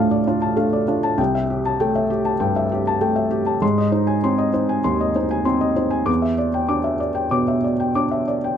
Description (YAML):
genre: neoclassical minimalist piano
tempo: 98 BPM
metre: 4/4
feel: rubato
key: unclear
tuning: A4 = 438 Hz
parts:
  - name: felt-muted upright piano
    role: solo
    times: 0.0-8.6 s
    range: C2 to D6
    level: -18 LUFS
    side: equal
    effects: none
room: light reverb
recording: dark, warm production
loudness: -18 LUFS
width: side -8 dB against mid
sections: 0.0-8.6 A section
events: none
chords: 0.0 Dm; 1.2 C6; 3.6 Ab; 6.1 Em7